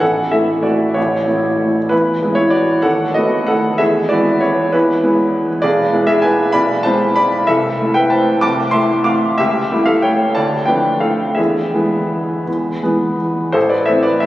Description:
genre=classical, piano waltz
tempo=162-205 BPM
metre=3/4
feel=rubato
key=A minor from 5.6 s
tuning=A4 = 441 Hz
part: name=clear upright piano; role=solo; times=0.0-14.3 s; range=A1 to D6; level=-13 LUFS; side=equal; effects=none
room=wet cathedral reverb, RT60 4.2 s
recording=recorded on a phone in the room, studio reverb, compression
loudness=-13 LUFS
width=side -15 dB against mid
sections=0.0-13.6 A section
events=none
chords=0.0 A; 1.9 E; 2.9 B7/D#; 3.8 E; 5.6 E7/B; 7.5 Am/C; 9.4 A7/C#; 10.4 Dm; 11.4 E; 13.6 Am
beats=| 0.01 0.33 0.65 | 0.96 1.28 1.61 | 1.92 2.22 2.54 | 2.85 3.16 3.49 | 3.80 4.11 4.42 | 4.74 5.03 5.34 | 5.64 5.94 6.25 | 6.55 6.86 7.18 | 7.49 7.79 8.11 | 8.42 8.73 9.07 | 9.39 9.71 10.04 | 10.36 10.68 11.02 | 11.38 11.74 12.11 | 12.47 12.83 13.19 | 13.55 13.88 14.22

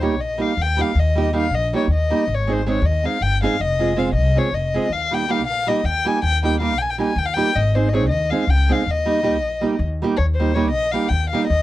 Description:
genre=balkan folk, Balkan wedding band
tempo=319 BPM (eighths)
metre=7/8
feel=straight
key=Eb mixolydian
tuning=A4 = 440 Hz
part: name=dark violin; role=melody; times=0.0-11.6 s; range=C5 to Ab5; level=-22 LUFS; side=left 3 dB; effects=none
part: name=nylon-string guitar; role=accompaniment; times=0.0-11.5 s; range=G3 to Ab4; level=-22 LUFS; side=right 4 dB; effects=none
part: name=upright bass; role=bass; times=0.0-11.6 s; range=F1 to Eb2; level=-21 LUFS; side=left 1 dB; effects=none
room=little or no reverb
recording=dry, close 1970s-style studio recording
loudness=-17 LUFS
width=side -15 dB against mid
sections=0.0-10.2 A section; 10.2-11.6 A section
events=none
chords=0.0 Eb; 2.3 Ab; 3.6 Fm; 4.9 Eb; 7.5 Ab; 8.9 Eb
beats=0.01 0.20 0.39 0.58 0.77 | 0.95 1.14 1.33 1.52 1.71 1.90 2.08 | 2.27 2.46 2.65 2.84 3.02 3.21 3.40 | 3.59 3.78 3.96 4.15 4.34 4.53 4.72 | 4.90 5.09 5.28 5.47 5.66 5.84 6.03 | 6.22 6.41 6.60 6.79 6.97 7.16 7.35 | 7.54 7.73 7.92 8.10 8.29 8.48 8.67 | 8.86 9.04 9.23 9.42 9.61 9.80 9.98 | 10.17 10.36 10.55 10.74 10.93 11.11 11.30 | 11.49

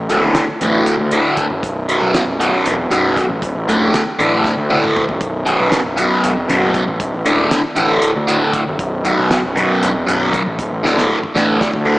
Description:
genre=psychedelic rock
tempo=234 BPM (eighths)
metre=7/8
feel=straight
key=unclear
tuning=A4 = 441 Hz
part: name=fuzz picked electric bass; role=bass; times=0.0-11.9 s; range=B0 to D2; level=-20 LUFS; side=equal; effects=overdrive
part: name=fuzz guitar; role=riff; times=0.1-12.0 s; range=B1 to D3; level=-14 LUFS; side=equal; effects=distortion, phaser
part: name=damped 70s drum kit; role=drums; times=0.1-11.9 s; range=hi-hat, kick drum, snare drum, toms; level=-23 LUFS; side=equal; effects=none
room=wet lush hall reverb, RT60 2.0 s, studio ambience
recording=dreamy mix soaked in reverb, small speaker sound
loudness=-13 LUFS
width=side -18 dB against mid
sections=0.0-12.0 A section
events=drum fill 4.4-5.2, 10.8-12.0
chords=0.0 D5; 1.6 B5; 3.4 D5; 5.2 B5; 7.0 D5; 8.8 B5; 10.6 D5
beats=0.09 0.35 0.60 0.86 1.12 1.37 | 1.63 1.88 2.14 2.40 2.65 2.91 3.16 | 3.42 3.68 3.93 4.19 4.45 4.70 4.96 | 5.21 5.47 5.73 5.98 6.24 6.49 6.75 | 7.01 7.26 7.52 7.78 8.03 8.29 8.54 | 8.80 9.06 9.31 9.57 9.82 10.08 10.34 | 10.59 10.85 11.11 11.36 11.62 11.87

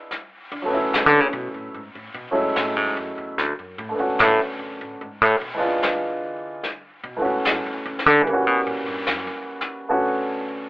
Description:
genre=jazz ballad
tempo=74 BPM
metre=4/4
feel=swing 69% on 8ths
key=A major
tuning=A4 = 440 Hz
part: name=warm upright piano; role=accompaniment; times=0.0-10.7 s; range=D3 to F#4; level=-24 LUFS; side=right 1 dB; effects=none
part: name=brushed snare drum and snare drum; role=drums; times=0.1-10.7 s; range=none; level=-28 LUFS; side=left 1 dB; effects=none
part: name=upright bass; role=bass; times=0.5-9.5 s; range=C#2 to D3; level=-19 LUFS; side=equal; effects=none
room=moderate studio reverb, RT60 0.5 s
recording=band playing live in one room, telephone sound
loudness=-19 LUFS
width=side -20 dB against mid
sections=0.0-10.7 A section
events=upright bass solo 0.0-10.7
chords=0.1 A69; 1.7 F#m9; 3.4 Bm7; 5.0 E7b9; 6.6 A6; 8.3 F#7b9; 9.9 Bm7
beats=| 0.11 0.93 1.75 2.56 | 3.38 4.19 5.01 5.82 | 6.63 7.45 8.26 9.07 | 9.89

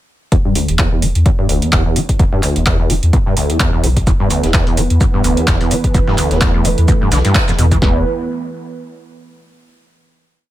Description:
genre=acid house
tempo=128 BPM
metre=4/4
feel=swing 56% on 16ths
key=E minor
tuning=A4 = 439 Hz
part: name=overdriven acid bass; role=riff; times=0.3-8.0 s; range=D2 to G3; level=-17 LUFS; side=equal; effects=distortion, tube saturation, lush chorus, tape echo
part: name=warm sub bass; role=bass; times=0.3-8.0 s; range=D1 to E2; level=-16 LUFS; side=equal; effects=sidechain pumping
part: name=electro analog drum machine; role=drums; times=0.3-7.8 s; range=handclaps, hi-hat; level=-20 LUFS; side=right 1 dB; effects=none
part: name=punchy analog drum machine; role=drums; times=0.3-7.9 s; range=kick drum, snare drum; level=-15 LUFS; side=equal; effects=none
part: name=warm analog pad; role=sustained chords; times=4.1-8.0 s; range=E3 to B4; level=-21 LUFS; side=right 2 dB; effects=chorus, sidechain pumping
part: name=dusty soul sampler-style drum kit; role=drums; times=4.1-7.8 s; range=hi-hat, shaker, snare drum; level=-26 LUFS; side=right 2 dB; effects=overdrive, sidechain pumping on perc, high-pass filter on perc, high-pass filter on snare, sidechain pumping on hats, high-pass filter on hats, high-pass filter on room
room=light reverb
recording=none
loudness=-12 LUFS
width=side -14 dB against mid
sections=0.3-7.8 groove; 7.8-9.7 final chord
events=filter sweep on acid bass 0.3-7.8; band accent 7.4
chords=0.3 E5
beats=| 0.32 0.79 1.26 1.73 | 2.19 2.66 3.13 3.60 | 4.07 4.54 5.01 5.48 | 5.95 6.41 6.88 7.35 | 7.82

